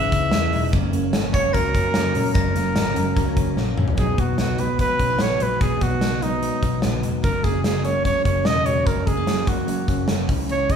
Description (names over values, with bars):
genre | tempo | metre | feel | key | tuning
jangly indie pop | 148 BPM | 4/4 | straight | B major | A4 = 440 Hz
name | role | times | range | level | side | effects
warm trumpet | melody | 0.0-10.8 s | D#4 to E5 | -23 LUFS | right 2 dB | none
glockenspiel with soft plastic mallets | second line | 0.0-3.5 s | A#6 to E7 | -34 LUFS | left 4 dB | none
picked steel-string acoustic guitar | accompaniment | 0.0-10.8 s | F#2 to D#4 | -30 LUFS | right 5 dB | none
direct-recorded clean electric guitar | arpeggios | 0.0-10.8 s | F#2 to D#4 | -28 LUFS | left 6 dB | none
vintage muted picked electric bass | bass | 0.0-10.8 s | E1 to A#2 | -26 LUFS | equal | tube saturation
big rock drum kit | drums | 0.1-10.8 s | hi-hat, kick drum, snare drum, toms | -23 LUFS | left 1 dB | none
room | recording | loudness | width
moderate large studio reverb, RT60 0.9 s | band playing live in one room | -18 LUFS | side -7 dB against mid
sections
0.0-4.0 A section; 4.0-10.8 B section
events
drum fill 3.6-4.0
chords
0.0 C#madd9; 0.7 F#; 4.0 B; 7.2 F#